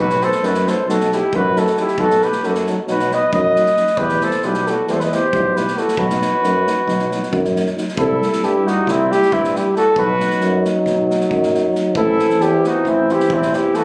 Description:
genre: balkan folk, Balkan brass band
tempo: 271 BPM (eighths)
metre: 9/8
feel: straight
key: B phrygian dominant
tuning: A4 = 440 Hz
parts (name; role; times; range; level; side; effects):
- mellow flugelhorn; melody; 0.0-13.8 s; E4 to D#5; -20 LUFS; equal; plate reverb
- mellow trumpet; second line; 0.0-13.8 s; C4 to B4; -27 LUFS; equal; none
- clear euphonium; accompaniment; 0.0-13.8 s; C4 to E4; -28 LUFS; equal; none
- mellow trombone; accompaniment; 0.0-13.8 s; E3 to G3; -26 LUFS; equal; none
- warm tuba; bass; 0.0-13.6 s; A1 to G2; -24 LUFS; equal; none
- unplugged drum kit; percussion; 0.1-13.8 s; kick drum, snare drum; -30 LUFS; equal; none
room: moderate studio reverb, RT60 0.6 s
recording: recorded on a phone in the room, club reverb, compression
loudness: -17 LUFS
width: mono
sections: 0.0-8.0 A section; 8.0-13.8 B section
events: none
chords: 0.0 B; 4.0 Em; 6.0 B; 8.0 C; 10.0 B; 11.9 Am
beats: 0.20 0.42 0.64 0.86 1.09 1.31 1.53 1.76 | 1.98 2.20 2.42 2.65 2.87 3.09 3.31 3.54 3.76 | 3.98 4.20 4.43 4.65 4.87 5.09 5.31 5.54 5.76 | 5.98 6.20 6.42 6.64 6.86 7.09 7.31 7.53 7.75 | 7.97 8.19 8.41 8.63 8.86 9.08 9.30 9.52 9.74 | 9.96 10.18 10.40 10.62 10.84 11.06 11.28 11.51 11.73 | 11.95 12.17 12.39 12.61 12.83 13.05 13.27 13.49 13.71

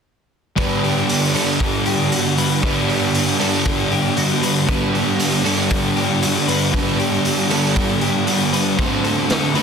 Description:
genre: rock, shoegaze and dream pop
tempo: 117 BPM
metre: 4/4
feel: straight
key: G major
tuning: A4 = 440 Hz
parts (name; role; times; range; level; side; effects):
- direct-recorded clean electric guitar; arpeggios; 0.6-9.6 s; F#4 to C5; -27 LUFS; left 12 dB; lush chorus, slapback echo
- overdriven semi-hollow guitar; riff; 0.6-9.6 s; G2 to F#4; -20 LUFS; right 9 dB; reverse reverb
- thick fuzz guitar; riff; 0.6-9.6 s; G2 to D4; -20 LUFS; left 9 dB; distortion, lush chorus
- raw garage drum kit; drums; 0.6-9.6 s; hi-hat, kick drum, snare drum; -22 LUFS; equal; none
room: light reverb, studio reverb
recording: dense, heavily limited modern master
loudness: -16 LUFS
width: side -6 dB against mid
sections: 0.6-9.6 A section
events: none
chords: 0.6 Gmaj7; 8.8 D7(no3)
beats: | 0.57 1.09 1.60 2.12 | 2.63 3.14 3.66 4.17 | 4.68 5.20 5.71 6.22 | 6.74 7.25 7.76 8.28 | 8.79 9.30

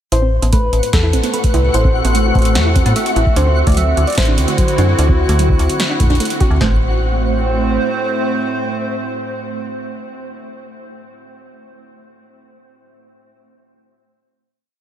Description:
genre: IDM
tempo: 148 BPM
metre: 4/4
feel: straight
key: unclear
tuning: A4 = 439 Hz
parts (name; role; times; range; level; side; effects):
- soft struck synth lead; melody; 0.1-10.6 s; A4 to E5; -23 LUFS; left 2 dB; chorus, ping-pong delay
- hollow soft pad; sustained chords; 0.1-10.6 s; A2 to C5; -21 LUFS; right 1 dB; chorus
- soft round pluck; arpeggios; 0.1-6.8 s; F#3 to F#4; -24 LUFS; right 3 dB; chorus, diffuse ambient delay
- metallic FM bass; bass; 0.1-7.8 s; A1 to A2; -15 LUFS; equal; none
- electro analog drum machine; drums; 0.1-6.5 s; hi-hat, snare drum; -24 LUFS; right 1 dB; ping-pong delay
- twinkling granular texture; texture; 0.8-6.6 s; F#4 to F#5; -25 LUFS; left 1 dB; built-in reverb, analog chorus, sidechain pumping
- electro analog drum machine; drums; 0.5-6.7 s; kick drum, snare drum; -16 LUFS; equal; none
room: light reverb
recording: none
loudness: -13 LUFS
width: side -10 dB against mid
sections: 0.1-6.6 groove; 6.6-9.8 final chord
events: none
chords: 0.1 Amadd9; 3.4 D9; 6.6 Am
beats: | 0.12 0.53 0.93 1.34 | 1.74 2.15 2.55 2.96 | 3.36 3.77 4.17 4.58 | 4.99 5.39 5.80 6.20 | 6.61 7.01 7.42 7.82 | 8.23 8.63 9.04 9.45

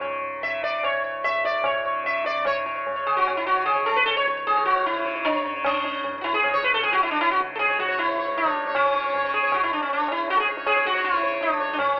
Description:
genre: indian classical, Hindustani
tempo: 146-161 BPM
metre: 4/4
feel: straight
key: C# raga bhairavi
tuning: A4 = 440 Hz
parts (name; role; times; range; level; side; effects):
- sitar; melody; 0.0-12.0 s; C#4 to E5; -24 LUFS; equal; none
- tanpura; drone; 0.0-12.0 s; C#2 to C#3; -35 LUFS; equal; none
- tabla; percussion; 0.0-12.0 s; none; -35 LUFS; equal; none
room: light reverb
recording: band playing live in one room, telephone sound, faint mains hum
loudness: -23 LUFS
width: mono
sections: 0.0-2.5 A section; 2.5-12.0 B section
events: speeding up 0.0-12.0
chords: none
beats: 0.01 0.42 | 0.83 1.24 1.65 2.05 | 2.46 2.86 3.26 3.67 | 4.07 4.46 4.86 5.25 | 5.65 6.04 6.43 6.83 | 7.21 7.60 7.99 8.37 | 8.76 9.14 9.52 9.90 | 10.28 10.66 11.04 11.41 | 11.79

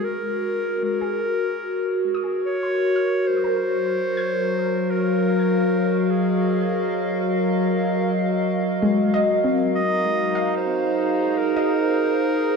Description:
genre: ambient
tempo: 74 BPM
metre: 4/4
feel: straight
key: unclear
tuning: A4 = 440 Hz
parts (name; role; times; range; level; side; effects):
- clear clarinet; melody; 0.0-12.6 s; Ab4 to Eb5; -26 LUFS; equal; ping-pong delay
- warbly tape-like pad; sustained chords; 0.0-12.6 s; Gb3 to F5; -21 LUFS; equal; chorus, built-in reverb
- soft round pluck; arpeggios; 0.0-12.6 s; Ab3 to Ab6; -27 LUFS; left 2 dB; lush chorus, ping-pong delay
- glass harmonica; texture; 9.8-12.6 s; Bb5; -35 LUFS; equal; none
room: wet concert hall reverb, RT60 2.2 s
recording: dark, warm production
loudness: -19 LUFS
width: side -5 dB against mid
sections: 0.0-12.6 A section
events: none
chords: 0.0 Gb; 3.3 Ebmadd9/Gb; 9.8 Ab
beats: | 0.03 0.84 1.65 2.46 | 3.27 4.08 4.90 5.71 | 6.52 7.33 8.14 8.95 | 9.76 10.57 11.38 12.19

